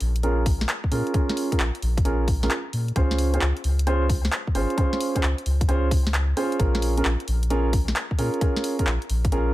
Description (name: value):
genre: UK garage, two-step garage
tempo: 132 BPM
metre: 4/4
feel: swing 67% on 16ths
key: Bb minor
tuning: A4 = 440 Hz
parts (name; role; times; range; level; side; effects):
- soft dub sub bass; bass; 0.0-9.5 s; Ab1 to Bb2; -23 LUFS; equal; sidechain pumping
- punchy analog drum machine; drums; 0.0-9.4 s; handclaps, hi-hat, snare drum; -29 LUFS; equal; none
- dark concert grand piano; stabs; 0.2-9.5 s; Db4 to C5; -26 LUFS; right 2 dB; low-pass filter, ping-pong delay
- electronic kick drum; drums; 0.5-9.3 s; none; -23 LUFS; equal; none
room: digital ambience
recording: none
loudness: -21 LUFS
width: side -16 dB against mid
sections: 0.0-9.5 A section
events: filter sweep on grand piano 0.0-9.5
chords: 0.0 Bbm7; 3.0 Dbmaj7; 6.6 Bbm7